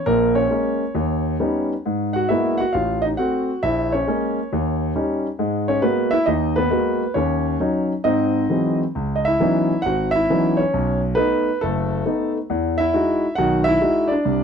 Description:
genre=solo jazz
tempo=136 BPM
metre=4/4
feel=swing 66% on 8ths, rubato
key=G# minor, C# minor from 9.0 s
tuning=A4 = 440 Hz
part: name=warm concert grand piano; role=solo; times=0.0-14.4 s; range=F#1 to F#5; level=-18 LUFS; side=equal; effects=none
room=light reverb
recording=close, detailed microphones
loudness=-18 LUFS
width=side -7 dB against mid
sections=0.0-9.0 A section; 9.0-14.4 B section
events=none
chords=0.1 A#m7; 1.0 D#aug7; 1.9 G#m9; 2.8 Am6; 3.6 A#m7b5; 4.5 D#7; 5.4 G#m9; 7.2 D#m7; 8.1 G#7b13; 9.0 C#m11; 10.7 B7; 12.5 Emaj9

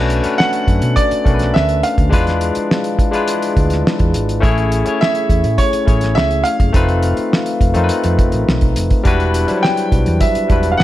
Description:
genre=lush 1970s-style soul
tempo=104 BPM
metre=4/4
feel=straight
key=unclear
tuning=A4 = 440 Hz
part: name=barky tine electric piano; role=accompaniment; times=0.0-10.8 s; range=F#3 to C#5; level=-18 LUFS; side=left 3 dB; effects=none
part: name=dark French horn section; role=sustained chords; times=0.0-10.8 s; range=C#3 to B4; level=-30 LUFS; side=right 4 dB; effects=none
part: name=hollow-body short-scale fingered electric bass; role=bass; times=0.0-10.8 s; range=E1 to B2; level=-18 LUFS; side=equal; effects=none
part: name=cloth-damped thuddy drum kit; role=drums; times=0.1-10.8 s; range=hi-hat, kick drum, snare drum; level=-16 LUFS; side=equal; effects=none
part: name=warm grand piano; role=melody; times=0.4-10.8 s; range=C#5 to G5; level=-20 LUFS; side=right 2 dB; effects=none
room=studio reverb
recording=none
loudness=-13 LUFS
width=side -14 dB against mid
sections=0.0-10.8 A section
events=none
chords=0.0 Bm9; 2.1 E7b9; 4.4 Amaj7; 6.7 F7#11; 9.1 Em9

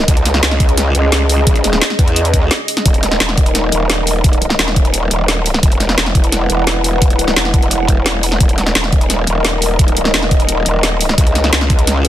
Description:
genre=dark technical drum and bass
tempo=173 BPM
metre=4/4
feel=straight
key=Eb phrygian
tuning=A4 = 440 Hz
part: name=dark analog pad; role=sustained chords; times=0.0-12.1 s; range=Db4 to Gb5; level=-20 LUFS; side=equal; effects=chorus, sidechain pumping
part: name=growl bass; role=bass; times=0.0-12.1 s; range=Eb1 to Fb2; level=-16 LUFS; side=equal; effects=chorus, overdrive
part: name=drum and bass drum kit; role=drums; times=0.1-12.1 s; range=hi-hat, snare drum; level=-16 LUFS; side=equal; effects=overdrive
part: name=electronic kick drum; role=drums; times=0.1-11.8 s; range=none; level=-13 LUFS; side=equal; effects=overdrive
room=little or no reverb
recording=dense, heavily limited modern master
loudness=-11 LUFS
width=side -12 dB against mid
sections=0.0-12.1 A section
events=break 2.5-2.9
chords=0.1 Dbmadd9; 2.9 Eb5; 5.6 E5; 8.4 Eb5; 11.2 Dbsus2

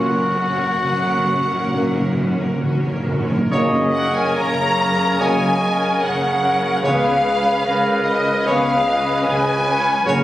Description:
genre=classical, slow romantic movement for symphony orchestra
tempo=65-75 BPM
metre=4/4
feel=rubato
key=F# major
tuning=A4 = 440 Hz
part: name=rich chamber violin section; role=melody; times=0.0-10.2 s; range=A#4 to A#5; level=-24 LUFS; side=left 1 dB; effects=none
part: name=clear clarinet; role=second line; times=0.0-10.2 s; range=F#4 to D#5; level=-24 LUFS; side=equal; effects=none
part: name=rich chamber violin section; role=second line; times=0.0-10.2 s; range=D#5 to A#5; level=-25 LUFS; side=equal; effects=none
part: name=rich chamber viola section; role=accompaniment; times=0.0-10.1 s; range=A#3 to B4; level=-26 LUFS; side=right 1 dB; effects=none
part: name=mellow French horn section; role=sustained chords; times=0.0-10.2 s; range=A#3 to F#4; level=-25 LUFS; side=left 1 dB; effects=none
part: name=bright studio cello section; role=bass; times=0.0-10.2 s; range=C#2 to F#2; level=-26 LUFS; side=equal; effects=none
part: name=clear chamber double bass section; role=bass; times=0.0-10.2 s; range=F#1 to C#2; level=-28 LUFS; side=right 1 dB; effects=none
part: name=timpani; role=percussion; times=0.0-10.2 s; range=F#2 to C#3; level=-26 LUFS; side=equal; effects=none
part: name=mellow oboe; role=second line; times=3.5-10.2 s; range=A#4 to C#5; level=-27 LUFS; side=right 1 dB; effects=none
part: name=mellow bassoon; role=accompaniment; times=3.5-10.2 s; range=C#3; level=-25 LUFS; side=equal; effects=none
part: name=warm trombone section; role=sustained chords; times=3.5-10.2 s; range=C#3 to G#3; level=-26 LUFS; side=right 2 dB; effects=none
part: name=clear trumpet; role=stabs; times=3.5-10.2 s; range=C#5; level=-26 LUFS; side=equal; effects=none
part: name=mellow hollow flute section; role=second line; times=3.9-10.0 s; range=D#5 to A#5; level=-27 LUFS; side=left 3 dB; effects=none
room=wet recital hall reverb, RT60 1.3 s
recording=recorded on a phone in the room, club reverb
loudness=-16 LUFS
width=side -14 dB against mid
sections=0.0-3.5 A section; 3.5-10.2 B section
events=timpani fill 0.0-3.5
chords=0.0 F#; 6.8 C#7

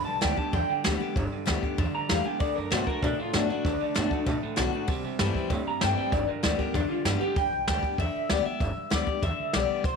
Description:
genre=rockabilly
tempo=193 BPM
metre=4/4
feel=straight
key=G major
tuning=A4 = 440 Hz
part: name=electric guitar through a small old amp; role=melody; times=0.0-10.0 s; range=D4 to Bb5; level=-29 LUFS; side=left 1 dB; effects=phaser, tape echo
part: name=picked steel-string acoustic guitar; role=accompaniment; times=0.0-10.0 s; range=G2 to G4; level=-32 LUFS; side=left 12 dB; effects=none
part: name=electric guitar through a small old amp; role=riff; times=0.0-7.4 s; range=G2 to B3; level=-34 LUFS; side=right 14 dB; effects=none
part: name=upright bass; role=bass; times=0.0-10.0 s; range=G1 to B2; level=-32 LUFS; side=right 1 dB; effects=none
part: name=jazz brush drum kit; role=drums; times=0.2-9.9 s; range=hi-hat, kick drum, snare drum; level=-30 LUFS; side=right 1 dB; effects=none
room=light reverb, small room reverb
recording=1960s-style stereo with parts hard left and right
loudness=-25 LUFS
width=side -5 dB against mid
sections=0.0-7.4 A section; 7.4-10.0 B section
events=clean electric guitar solo 0.0-7.4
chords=0.0 G; 2.4 D; 4.9 C; 6.1 G

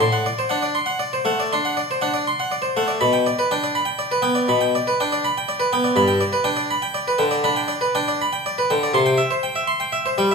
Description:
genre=classical, baroque-style suite movement for harpsichord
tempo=81 BPM (dotted quarters)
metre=12/8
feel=rubato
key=G major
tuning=A4 = 440 Hz
part: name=harpsichord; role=solo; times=0.0-10.3 s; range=G2 to C6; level=-18 LUFS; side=equal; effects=none
room=wet stone room reverb, RT60 1.0 s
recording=heard from further back in the room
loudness=-18 LUFS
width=side -4 dB against mid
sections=0.0-10.3 A section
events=none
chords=0.0 D7/A; 3.0 G/B; 6.0 G; 9.0 C

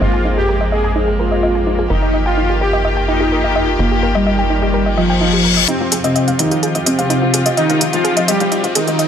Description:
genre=melodic techno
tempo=127 BPM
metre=4/4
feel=straight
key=F minor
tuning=A4 = 444 Hz
part: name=soft supersaw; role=melody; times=0.0-9.1 s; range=C3 to Ab4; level=-17 LUFS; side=equal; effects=dub echo
part: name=dark chamber string section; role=sustained chords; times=0.0-9.1 s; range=Eb3 to G4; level=-20 LUFS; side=left 1 dB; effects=low-pass filter
part: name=woody wave-folded pluck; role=arpeggios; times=0.0-9.1 s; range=Eb4 to Ab5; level=-21 LUFS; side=equal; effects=chorus, dub echo
part: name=tight sequencer bass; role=bass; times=0.0-9.0 s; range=F1 to Ab1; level=-20 LUFS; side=equal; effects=high-pass filter
part: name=swarming drone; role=drone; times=0.0-5.7 s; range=F2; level=-29 LUFS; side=right 1 dB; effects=built-in reverb
part: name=reverse cymbal and riser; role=sound effects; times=5.0-9.1 s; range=none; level=-21 LUFS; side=left 7 dB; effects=none
part: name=electronic hi-hat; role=drums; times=5.7-9.1 s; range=none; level=-19 LUFS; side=right 1 dB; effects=studio reverb
room=light reverb, digital ambience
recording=none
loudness=-13 LUFS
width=side -8 dB against mid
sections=0.0-5.7 A section; 5.7-9.1 B section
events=filter sweep on synth pluck 0.0-5.7; filter sweep on supersaw synth 0.0-5.7; filter sweep on string section 0.0-5.7; reverse cymbal 5.0-5.7; build-up 5.7-9.1; riser 5.7-9.1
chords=0.0 Abadd9; 1.9 Eb/G; 5.7 F7(no3)

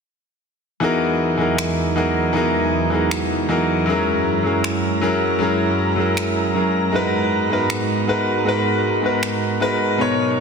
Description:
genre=future bass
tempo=157 BPM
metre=4/4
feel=half-time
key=unclear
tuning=A4 = 442 Hz
part: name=clear concert grand piano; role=accompaniment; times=0.8-10.4 s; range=B2 to C#5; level=-18 LUFS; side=left 1 dB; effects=ping-pong delay
part: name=airy breathy pad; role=sustained chords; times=0.8-10.4 s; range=E2 to A#5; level=-22 LUFS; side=right 3 dB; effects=chorus, vintage 12-bit sampler grit
part: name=electronic finger snaps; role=drums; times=1.6-9.3 s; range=none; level=-29 LUFS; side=equal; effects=soft clipping on snare
room=moderate lush hall reverb, RT60 2.1 s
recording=dense, heavily limited modern master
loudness=-17 LUFS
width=side -5 dB against mid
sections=0.8-10.4 A section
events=none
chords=0.8 Emaj9#11; 3.9 F#7; 6.9 G#m9

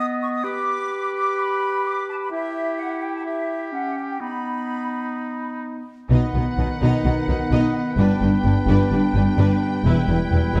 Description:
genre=cinematic, heroic adventure film score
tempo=128 BPM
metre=4/4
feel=straight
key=unclear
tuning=A4 = 440 Hz
part: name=bright clarinet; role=second line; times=0.0-10.6 s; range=B3 to G4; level=-31 LUFS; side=equal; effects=none
part: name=flute section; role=second line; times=0.0-10.6 s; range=E5 to D#6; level=-31 LUFS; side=equal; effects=none
part: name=warm oboe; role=second line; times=0.0-10.6 s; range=D#4 to D#5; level=-34 LUFS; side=equal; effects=none
part: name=warm symphonic violin section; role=melody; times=6.1-10.6 s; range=F#5 to G5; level=-39 LUFS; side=equal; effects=none
part: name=rich symphonic violin section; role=second line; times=6.1-10.6 s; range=B4 to D#5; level=-35 LUFS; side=equal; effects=none
part: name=warm symphonic viola section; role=accompaniment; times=6.1-10.6 s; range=D4 to E4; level=-30 LUFS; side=equal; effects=none
part: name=mellow French horn section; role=sustained chords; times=6.1-10.6 s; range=D#3 to B3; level=-30 LUFS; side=equal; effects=none
part: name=clear symphonic double bass section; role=bass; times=6.1-10.6 s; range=E1 to B1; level=-24 LUFS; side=equal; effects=none
part: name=rich symphonic cello section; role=bass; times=6.1-10.6 s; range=E2 to B2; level=-23 LUFS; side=equal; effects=none
room=moderate scoring stage reverb, RT60 1.6 s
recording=dark, warm production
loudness=-22 LUFS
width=mono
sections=0.0-6.1 A section; 6.1-10.6 B section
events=none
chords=0.5 G; 2.3 Em; 4.2 B; 8.0 G; 9.8 Em

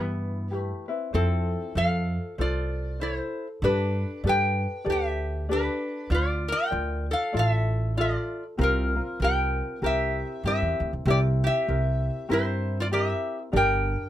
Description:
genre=Hawaiian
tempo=97 BPM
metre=4/4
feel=swing 59% on 8ths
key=F major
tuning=A4 = 440 Hz
part: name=metal-body resonator slide guitar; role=melody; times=0.0-14.1 s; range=E3 to G5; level=-27 LUFS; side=left 1 dB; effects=none
part: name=ukulele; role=accompaniment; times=0.0-14.1 s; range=C4 to D5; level=-32 LUFS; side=left 2 dB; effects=none
part: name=upright bass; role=bass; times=0.0-13.9 s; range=G1 to G2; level=-27 LUFS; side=right 1 dB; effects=none
room=light reverb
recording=close, detailed microphones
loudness=-24 LUFS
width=side -12 dB against mid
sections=0.0-1.1 A section; 1.1-14.1 B section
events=none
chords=0.0 Cmaj7; 1.1 Fmaj7; 3.6 Gadd9; 6.1 Dmadd9; 8.6 C7sus4; 9.8 C7; 13.5 Gm

